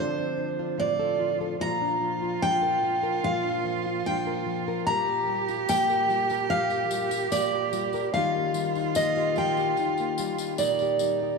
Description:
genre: acoustic folk duo or small band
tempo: 74 BPM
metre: 4/4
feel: straight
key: unclear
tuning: A4 = 440 Hz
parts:
  - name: picked steel-string acoustic guitar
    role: melody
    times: 0.0-11.4 s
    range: C5 to Bb5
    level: -26 LUFS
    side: right 1 dB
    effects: none
  - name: warm cello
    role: second line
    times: 0.0-11.4 s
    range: D4 to G4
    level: -30 LUFS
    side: right 9 dB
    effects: none
  - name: nylon-string guitar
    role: accompaniment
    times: 0.0-11.4 s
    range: A2 to Bb4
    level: -31 LUFS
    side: left 10 dB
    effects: none
  - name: tambourine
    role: percussion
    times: 4.9-11.2 s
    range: none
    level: -39 LUFS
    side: left 14 dB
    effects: none
room: wet echo chamber reverb, RT60 2.5 s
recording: 1960s-style stereo with parts hard left and right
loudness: -24 LUFS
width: side -4 dB against mid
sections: 0.0-11.4 A section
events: none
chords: 0.0 Dm7; 1.6 Bb; 4.9 Gm7/Bb; 8.1 Eb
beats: 0.79 | 1.60 2.42 3.23 4.05 | 4.87 5.68 6.50 7.31 | 8.13 8.95 9.77 10.58

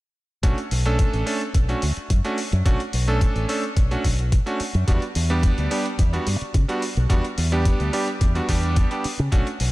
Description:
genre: nu-disco, nu disco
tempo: 108 BPM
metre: 4/4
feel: straight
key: B minor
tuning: A4 = 439 Hz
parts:
  - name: bright electric grand piano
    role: accompaniment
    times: 0.4-9.5 s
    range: G3 to A4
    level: -25 LUFS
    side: right 2 dB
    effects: diffuse ambient delay
  - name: fingered electric bass with an envelope filter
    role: bass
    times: 0.4-9.7 s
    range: A1 to C#3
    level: -22 LUFS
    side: equal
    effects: none
  - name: electronic hi-hat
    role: drums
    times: 0.4-9.7 s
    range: none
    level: -33 LUFS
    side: left 2 dB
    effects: none
  - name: electronic kick drum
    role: drums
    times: 0.4-9.4 s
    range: none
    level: -19 LUFS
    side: equal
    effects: none
room: light reverb, digital ambience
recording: none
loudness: -19 LUFS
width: side -19 dB against mid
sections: 0.4-9.7 A section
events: none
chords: 0.4 Bm7; 4.9 Em7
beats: | 0.43 0.99 1.54 2.10 | 2.66 3.21 3.77 4.32 | 4.88 5.43 5.99 6.54 | 7.10 7.66 8.21 8.77 | 9.32

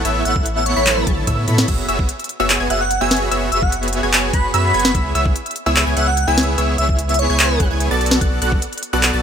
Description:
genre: future bass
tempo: 147 BPM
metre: 4/4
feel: half-time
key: unclear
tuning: A4 = 440 Hz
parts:
  - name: wide unison pluck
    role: arpeggios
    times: 0.0-9.2 s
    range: E6 to B6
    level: -25 LUFS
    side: moving between left 4 dB and right 4 dB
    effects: auto-pan, sidechain pumping, digital delay
  - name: dense compressed supersaw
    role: riff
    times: 0.0-9.2 s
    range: B3 to B5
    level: -21 LUFS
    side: equal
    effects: sidechain pumping, digital delay
  - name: saturated sub bass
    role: bass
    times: 0.0-9.2 s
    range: F#1 to A2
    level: -21 LUFS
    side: equal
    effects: sidechain pumping
  - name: trap drum kit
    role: drums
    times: 0.0-9.1 s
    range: crash cymbal, handclaps, hi-hat, snare drum, toms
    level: -19 LUFS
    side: equal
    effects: none
  - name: airy dreamy lead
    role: melody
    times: 0.3-7.6 s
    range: C#5 to B5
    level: -21 LUFS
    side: equal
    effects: chorus, sidechain pumping, digital delay
  - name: electronic kick drum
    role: drums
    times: 0.4-8.6 s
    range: none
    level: -19 LUFS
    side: equal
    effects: none
room: light reverb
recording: none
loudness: -14 LUFS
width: side -8 dB against mid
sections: 0.0-1.7 A section; 1.7-9.2 A section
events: drop 0.0-1.7, 1.7-9.2; drum fill 0.9-1.7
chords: 0.0 A69; 1.7 F#9sus4; 4.9 C#m7; 8.0 Bm7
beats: | 0.05 0.46 0.87 1.27 | 1.68 2.09 2.50 2.91 | 3.31 3.72 4.13 4.54 | 4.95 5.36 5.76 6.17 | 6.58 6.99 7.40 7.80 | 8.21 8.62 9.03

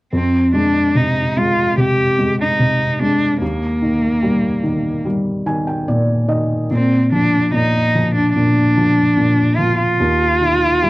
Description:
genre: folk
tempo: 73 BPM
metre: 4/4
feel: straight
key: F dorian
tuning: A4 = 440 Hz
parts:
  - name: warm cello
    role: melody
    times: 0.1-10.9 s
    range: Bb3 to G4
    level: -16 LUFS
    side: equal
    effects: cassette tape
  - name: felt-muted upright piano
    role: accompaniment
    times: 0.1-10.9 s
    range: Eb2 to Ab5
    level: -17 LUFS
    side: equal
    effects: cassette tape
room: moderate small room reverb, RT60 0.5 s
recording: home recording on cassette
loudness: -14 LUFS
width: side -19 dB against mid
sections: 0.1-10.9 A section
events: none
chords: 0.1 Fm; 3.4 Eb; 6.7 Bb; 10.0 Ebsus2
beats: | 0.12 0.94 1.77 2.59 | 3.42 4.24 5.06 5.88 | 6.71 7.53 8.34 9.16 | 9.99 10.81

